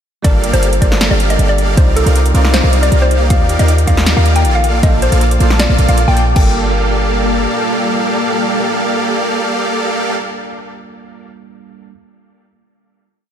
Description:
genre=future bass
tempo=157 BPM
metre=4/4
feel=half-time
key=G minor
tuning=A4 = 440 Hz
part: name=mallet-like synth pluck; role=melody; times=0.2-10.1 s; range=A4 to G5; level=-19 LUFS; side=left 2 dB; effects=chorus, vintage 12-bit sampler grit, sidechain pumping, diffuse ambient delay
part: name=bell-like tine electric piano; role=accompaniment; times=0.2-11.9 s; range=Bb2 to D5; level=-23 LUFS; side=right 4 dB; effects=wide subtle chorus, sidechain pumping, analog delay
part: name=ethereal airy pad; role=sustained chords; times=0.8-10.2 s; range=G3 to D6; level=-24 LUFS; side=left 2 dB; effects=ensemble chorus, built-in reverb, tremolo, sidechain pumping
part: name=supersaw chords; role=riff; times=0.2-10.2 s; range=Bb3 to G5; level=-17 LUFS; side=right 1 dB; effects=sidechain pumping, analog delay
part: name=warm 808-style bass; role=bass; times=0.2-7.5 s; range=G1 to Eb2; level=-13 LUFS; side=equal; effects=sidechain pumping
part: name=big-room dance drum kit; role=drums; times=0.2-6.4 s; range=crash cymbal, hi-hat, snare drum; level=-20 LUFS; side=equal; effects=none
part: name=electronic kick drum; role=drums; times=0.2-6.4 s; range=none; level=-12 LUFS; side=equal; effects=none
room=moderate lush hall reverb, RT60 2.1 s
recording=dreamy mix soaked in reverb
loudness=-10 LUFS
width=side -9 dB against mid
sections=0.2-6.4 drop; 6.4-9.4 final chord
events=drop 0.2-6.4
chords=0.2 Gm9; 1.8 Cm11; 3.1 Ebmaj9; 4.6 Bbmaj7; 6.4 Gm9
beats=| 0.24 0.63 1.01 1.39 | 1.77 2.16 2.54 2.92 | 3.30 3.69 4.07 4.45 | 4.83 5.21 5.60 5.98 | 6.36 6.74 7.12 7.51 | 7.89 8.27 8.65 9.04

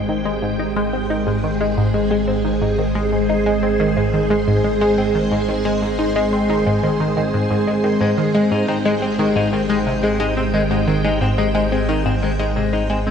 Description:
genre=ambient, sequencer-driven space music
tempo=89 BPM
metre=4/4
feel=straight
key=Ab major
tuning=A4 = 440 Hz
part: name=string machine, full ensemble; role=sustained chords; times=0.0-13.1 s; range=Ab3 to C6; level=-20 LUFS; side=right 1 dB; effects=ensemble chorus, shimmer reverb
part: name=analog pluck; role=riff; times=0.0-13.1 s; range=Ab2 to Eb4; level=-20 LUFS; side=left 1 dB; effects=chorus, phaser, ping-pong delay, shimmer reverb
part: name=round analog bass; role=bass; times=0.0-13.1 s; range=Ab1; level=-27 LUFS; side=right 1 dB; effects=none
part: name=pulsing gated texture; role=texture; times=0.6-13.1 s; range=C4 to C5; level=-34 LUFS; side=left 1 dB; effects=none
part: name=clean electric guitar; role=arpeggios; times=8.0-13.1 s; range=Ab3 to Eb4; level=-23 LUFS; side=left 3 dB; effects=auto-pan, ping-pong delay, shimmer reverb
room=wet cathedral reverb, RT60 5.5 s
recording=in a vast, echoing space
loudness=-16 LUFS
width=side -7 dB against mid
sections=0.0-13.1 A section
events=fade-out 11.6-13.1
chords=0.0 Abmaj7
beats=0.59 1.27 1.94 | 2.62 3.29 3.97 4.64 | 5.31 5.99 6.66 7.34 | 8.01 8.69 9.36 10.03 | 10.71 11.38 12.05 12.73

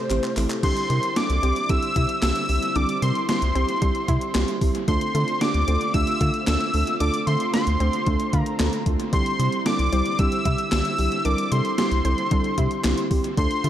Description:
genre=synth-pop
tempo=113 BPM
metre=4/4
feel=straight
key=unclear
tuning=A4 = 440 Hz
part: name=fat analog lead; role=melody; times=0.0-13.7 s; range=C5 to E6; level=-26 LUFS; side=equal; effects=dub echo
part: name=muted felt-like synth keys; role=accompaniment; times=0.0-13.7 s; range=G3 to Bb4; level=-27 LUFS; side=right 3 dB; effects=chorus
part: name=string machine, full ensemble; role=sustained chords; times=0.0-13.7 s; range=C3 to G4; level=-32 LUFS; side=left 1 dB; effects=ensemble chorus
part: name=round analog bass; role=bass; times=0.1-13.7 s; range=A1 to D3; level=-23 LUFS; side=equal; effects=none
part: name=gated 80s digital drum machine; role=drums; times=0.1-13.7 s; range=crash cymbal, handclaps, hi-hat, kick drum, snare drum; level=-26 LUFS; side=equal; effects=gated reverb, gated reverb snare, overdrive
part: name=analog pluck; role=arpeggios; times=0.6-13.7 s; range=D3 to F4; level=-33 LUFS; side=left 3 dB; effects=chorus, dub echo
room=light reverb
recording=echo-heavy mix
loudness=-20 LUFS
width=side -11 dB against mid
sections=0.6-13.7 A section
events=drum fill 0.0-0.6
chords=0.0 Am7; 0.6 Cadd9; 4.9 Dm7; 9.1 Cadd9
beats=0.10 | 0.63 1.16 1.70 2.23 | 2.76 3.29 3.82 4.35 | 4.88 5.41 5.94 6.47 | 7.00 7.54 8.07 8.60 | 9.13 9.66 10.19 10.72 | 11.25 11.78 12.31 12.85 | 13.38

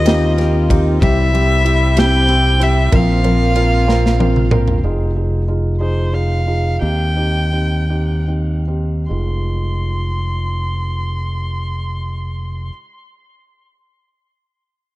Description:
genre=six-eight pop ballad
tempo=47-63 BPM (dotted quarters)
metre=6/8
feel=straight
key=F minor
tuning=A4 = 440 Hz
part: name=warm violin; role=melody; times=0.0-12.7 s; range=C5 to C6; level=-22 LUFS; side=equal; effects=tape echo
part: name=mellow French horn section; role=second line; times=0.0-4.8 s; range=Bb3 to F4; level=-25 LUFS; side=left 4 dB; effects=none
part: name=warm studio string section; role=sustained chords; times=0.0-4.8 s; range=Eb3 to F4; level=-28 LUFS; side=left 1 dB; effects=none
part: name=fingerpicked steel-string acoustic guitar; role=arpeggios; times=0.0-5.4 s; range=F3 to Bb4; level=-25 LUFS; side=left 3 dB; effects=tape echo
part: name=modern bright fingered electric bass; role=bass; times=0.0-12.7 s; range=F1 to Eb2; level=-17 LUFS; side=equal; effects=none
part: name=felt-muted upright piano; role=accompaniment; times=0.1-12.7 s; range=Ab3 to Bb4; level=-22 LUFS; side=right 1 dB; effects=none
part: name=modern studio drum kit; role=drums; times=0.1-4.8 s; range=kick drum, ride cymbal, snare drum, toms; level=-17 LUFS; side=equal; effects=none
room=light reverb, small room ambience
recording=dark, warm production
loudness=-14 LUFS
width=side -17 dB against mid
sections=0.0-4.8 A section; 4.8-9.1 B section; 9.1-14.2 C section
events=drum fill 3.9-4.8; slowing down 4.8-9.1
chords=0.0 Eb6; 1.0 C; 2.9 Bbsus2; 4.8 Fm7; 6.8 Eb6; 9.1 Fm7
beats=0.06 | 1.01 1.97 | 2.92 3.88 | 4.83 5.80 | 6.81 7.90 | 9.10 10.38 | 11.66

